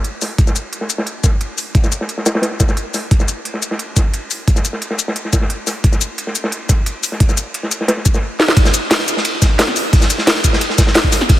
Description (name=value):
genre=drum and bass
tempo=176 BPM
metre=4/4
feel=straight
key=none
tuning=none
part: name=crunchy breakbeat drum kit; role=drums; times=0.0-11.4 s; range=hi-hat, ride cymbal, snare drum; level=-21 LUFS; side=equal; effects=high-pass filter on cymbals, low-pass filter on cymbals, high-pass filter on hats, low-pass filter on hats, high-pass filter on snare, low-pass filter on snare, high-pass filter on room, low-pass filter on room
part: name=garage drum kit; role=drums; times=0.0-11.4 s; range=hi-hat, shaker, snare drum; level=-18 LUFS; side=left 1 dB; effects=none
part: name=electronic kick drum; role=drums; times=0.4-11.4 s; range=none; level=-13 LUFS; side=equal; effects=none
room=light reverb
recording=none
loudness=-14 LUFS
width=side -14 dB against mid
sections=0.0-8.6 A section; 8.6-11.4 B section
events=filter sweep on drum 0.0-8.6; drum fill 8.4; drop 8.6-11.4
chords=none